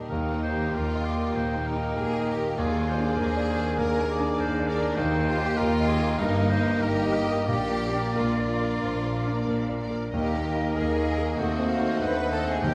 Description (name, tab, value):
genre	classical, romantic movement for piano and orchestra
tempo	88-104 BPM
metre	4/4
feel	rubato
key	Eb major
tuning	A4 = 441 Hz
part	warm concert grand piano	melody	0.0-12.7 s	Eb2 to Eb5	-31 LUFS	equal	none
part	rich studio violin section	second line	0.0-12.7 s	D4 to Cb5	-36 LUFS	equal	none
part	warm studio viola section	accompaniment	0.0-12.7 s	Bb3 to Bb4	-37 LUFS	equal	none
part	silver concert flute	second line	0.1-12.7 s	Bb4 to Ab5	-38 LUFS	equal	none
part	warm cor anglais	second line	0.1-12.7 s	Ab4 to G5	-37 LUFS	equal	none
part	warm bassoon	accompaniment	0.1-12.7 s	A3 to Bb3	-38 LUFS	equal	none
part	mellow French horn section	sustained chords	0.1-12.7 s	A3 to Ab4	-38 LUFS	equal	none
part	rich studio cello section	bass	0.1-12.7 s	Eb2 to Bb2	-36 LUFS	equal	none
part	rich studio double bass section	bass	0.1-12.7 s	G1 to Eb2	-36 LUFS	equal	none
part	timpani	percussion	0.1-1.0, 7.5-12.7 s	Bb2 to Eb3	-40 LUFS	equal	none
part	rich studio violin section	melody	0.4-12.7 s	Bb4 to Eb5	-44 LUFS	equal	none
room	moderate scoring stage reverb, RT60 1.6 s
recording	none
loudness	-26 LUFS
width	mono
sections	0.1-12.7 A section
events	none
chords	0.1 Eb; 2.6 Bb7/Eb; 5.0 Eb; 6.2 Eb/G; 7.5 Bb; 10.1 Eb; 11.4 Ebdim7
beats	| 0.10 0.74 1.36 1.98 | 2.59 3.19 3.80 4.40 | 4.98 5.59 6.20 6.83 | 7.48 8.16 8.83 9.48 | 10.13 10.77 11.39 12.01 | 12.64